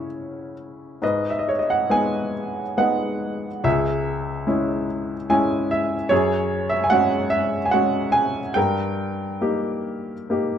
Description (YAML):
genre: classical, lyrical solo piano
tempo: 64-76 BPM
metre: 3/4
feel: rubato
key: C# minor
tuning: A4 = 439 Hz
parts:
  - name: clear upright piano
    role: solo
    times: 0.0-10.6 s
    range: C#2 to G#5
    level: -20 LUFS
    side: equal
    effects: none
room: light reverb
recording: dark, warm production, lossy compression artefacts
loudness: -20 LUFS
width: side -8 dB against mid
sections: 0.0-1.0 A section; 1.0-10.6 B section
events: upright piano fill 4.9-6.1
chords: 0.0 C#m; 1.0 G#m; 3.6 C#m; 6.1 F#sus2; 8.6 D#/G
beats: 0.10 | 1.02 1.90 2.78 | 3.65 4.48 5.30 | 6.11 6.91 7.73 | 8.56 9.41 10.30